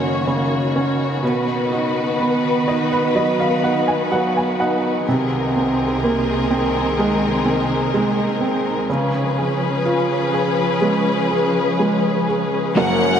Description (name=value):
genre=pop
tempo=62 BPM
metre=4/4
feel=straight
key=unclear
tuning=A4 = 439 Hz
part: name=clear upright piano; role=accompaniment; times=0.0-13.2 s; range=F#1 to G#5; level=-19 LUFS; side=right 2 dB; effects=none
part: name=warm studio string section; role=sustained chords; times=0.0-13.2 s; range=B#1 to C#5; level=-20 LUFS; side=left 2 dB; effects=none
part: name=clear studio violin section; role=second line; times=12.8-13.2 s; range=F#5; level=-20 LUFS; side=left 1 dB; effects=diffuse ambient delay
part: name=electric guitar at the edge of break-up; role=arpeggios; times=12.8-13.2 s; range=F#3 to A#4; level=-20 LUFS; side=left 2 dB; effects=diffuse ambient delay
room=wet cathedral reverb, RT60 6.9 s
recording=dreamy mix soaked in reverb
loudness=-16 LUFS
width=side -8 dB against mid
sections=0.0-12.8 A section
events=upright piano fill 2.2-5.1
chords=0.0 F#6; 1.2 B; 5.1 G#add9/B#; 8.9 C#7